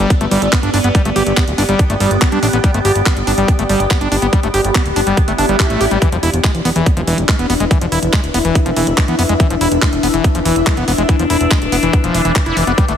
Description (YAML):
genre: psychedelic trance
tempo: 142 BPM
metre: 4/4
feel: straight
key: unclear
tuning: A4 = 439 Hz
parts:
  - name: evolving wavetable pad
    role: sustained chords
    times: 0.0-13.0 s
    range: B3 to D4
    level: -21 LUFS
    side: left 2 dB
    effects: phaser, built-in reverb, sidechain pumping
  - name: screaming distorted acid line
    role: riff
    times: 0.0-12.9 s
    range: E3 to G4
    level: -18 LUFS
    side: left 1 dB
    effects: distortion, chorus, auto-pan, sidechain pumping, tape echo
  - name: fat analog bass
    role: bass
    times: 0.0-12.9 s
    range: D1 to G2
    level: -18 LUFS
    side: equal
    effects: none
  - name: garage drum kit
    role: drums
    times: 0.0-13.0 s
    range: handclaps, hi-hat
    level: -21 LUFS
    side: right 1 dB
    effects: small room ambience
  - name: granular cloud pad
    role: texture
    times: 0.0-13.0 s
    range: E4 to E6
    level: -21 LUFS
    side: left 1 dB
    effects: built-in reverb, sidechain pumping
  - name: electronic kick drum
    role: drums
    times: 0.1-12.9 s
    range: none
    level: -14 LUFS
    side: equal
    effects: small room ambience
  - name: swell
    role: sound effects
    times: 5.3-6.0 s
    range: none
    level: -25 LUFS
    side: right 2 dB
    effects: none
room: light reverb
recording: heavily compressed radio sound, multiband compression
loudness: -12 LUFS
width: side -9 dB against mid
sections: 0.0-13.0 A section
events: swell 5.3-6.0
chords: 0.0 G5; 6.0 E5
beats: 0.10 0.53 | 0.95 1.37 1.79 2.22 | 2.64 3.06 3.48 3.91 | 4.33 4.75 5.17 5.60 | 6.02 6.44 6.86 7.29 | 7.71 8.13 8.55 8.98 | 9.40 9.82 10.24 10.67 | 11.09 11.51 11.93 12.36 | 12.78